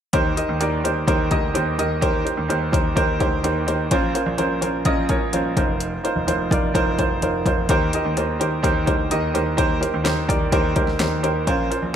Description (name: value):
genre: piano-driven pop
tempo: 127 BPM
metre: 4/4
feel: straight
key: unclear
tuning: A4 = 440 Hz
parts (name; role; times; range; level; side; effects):
- clear upright piano; accompaniment; 0.1-12.0 s; Bb2 to Eb5; -21 LUFS; right 1 dB; none
- clear grand piano; bass; 0.1-12.0 s; F1 to Eb2; -25 LUFS; right 1 dB; none
- deep house drum kit; drums; 0.1-11.8 s; hi-hat, kick drum, snare drum; -23 LUFS; left 1 dB; overdrive
room: light reverb, small room reverb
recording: bright 1980s-style digital production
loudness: -18 LUFS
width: side -9 dB against mid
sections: 0.1-12.0 A section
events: none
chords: 0.1 Eb6; 3.9 Bbmadd9; 5.6 F7sus4; 7.7 Eb6